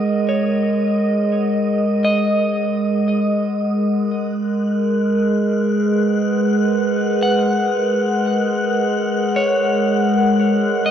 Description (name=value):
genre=ambient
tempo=free time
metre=none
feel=none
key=G# minor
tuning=A4 = 439 Hz
part: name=warbly tape-like pad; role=sustained chords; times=0.0-10.9 s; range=G#3 to F#5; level=-16 LUFS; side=equal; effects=chorus, built-in reverb
part: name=electric guitar at the edge of break-up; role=arpeggios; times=0.0-10.9 s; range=A#4 to F#5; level=-24 LUFS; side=left 1 dB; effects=tape echo
part: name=wind-like tuned noise texture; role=texture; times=0.0-10.9 s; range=D#6 to F#6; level=-31 LUFS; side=left 3 dB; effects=built-in reverb, wide subtle chorus
room=wet lush hall reverb, RT60 2.6 s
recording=dreamy mix soaked in reverb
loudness=-16 LUFS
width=side -9 dB against mid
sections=0.0-10.9 A section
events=fade-in on synth texture 0.0-10.9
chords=0.0 D#m/G#; 3.9 G#m7; 10.1 D#m/G# (rootless)